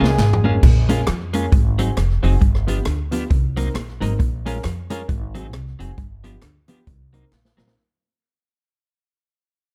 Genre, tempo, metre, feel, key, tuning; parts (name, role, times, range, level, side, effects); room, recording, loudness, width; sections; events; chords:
ska; 135 BPM; 4/4; swing 59% on 8ths; Bb minor; A4 = 440 Hz
clean electric guitar; accompaniment; 0.0-7.7 s; F3 to F4; -27 LUFS; equal; harmonic tremolo
electric guitar at the edge of break-up; riff; 0.0-7.7 s; F2 to F3; -31 LUFS; equal
dark upright piano; stabs; 0.0-7.7 s; Bb3 to Bb4; -31 LUFS; equal; tube saturation
upright bass; bass; 0.0-7.7 s; F1 to F2; -23 LUFS; equal; tube saturation
swinging big-band drum kit; drums; 0.0-7.8 s; crash cymbal, hi-hat, kick drum, rim click, snare drum, toms; -21 LUFS; equal
group handclap; percussion; 0.2-7.4 s; -43 LUFS; equal; dub echo
small room ambience; -19 LUFS; mono
0.6-7.8 A section
drum fill 0.0-0.6, 7.3-7.8; fade-out 0.6-7.8
0.0 Bbm7; 1.5 Ab7; 2.4 G7; 3.3 Cm7b5; 4.2 Bbm7; 5.1 Ab7; 6.0 G7; 6.9 Cm7b5